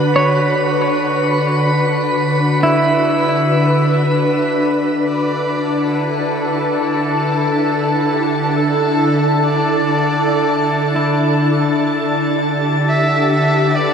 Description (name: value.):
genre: ambient.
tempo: free time.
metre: none.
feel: none.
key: D major.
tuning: A4 = 440 Hz.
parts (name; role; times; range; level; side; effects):
glassy FM pad; sustained chords; 0.0-13.9 s; D3 to A5; -16 LUFS; left 1 dB; ensemble chorus, built-in reverb.
bowed-like drone; drone; 0.0-13.9 s; D3 to D4; -23 LUFS; equal; built-in reverb.
drifting glass-harmonics texture; texture; 0.0-13.9 s; A4 to B5; -20 LUFS; right 1 dB; chorus, built-in reverb.
semi-hollow electric guitar; arpeggios; 0.2-12.3 s; D4 to C#5; -22 LUFS; right 1 dB; spring reverb, ping-pong delay.
rich electric violin; melody; 5.1-13.9 s; G4 to E5; -23 LUFS; right 1 dB; ping-pong delay.
room: wet shimmer reverb, RT60 7.5 s.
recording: none.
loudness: -14 LUFS.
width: side -6 dB against mid.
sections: 0.0-5.1 A section; 5.1-13.9 B section.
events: fade-in on electric violin 5.1-13.9.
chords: 0.0 Bmadd9/D; 5.1 Dsus2; 12.0 Em7/D.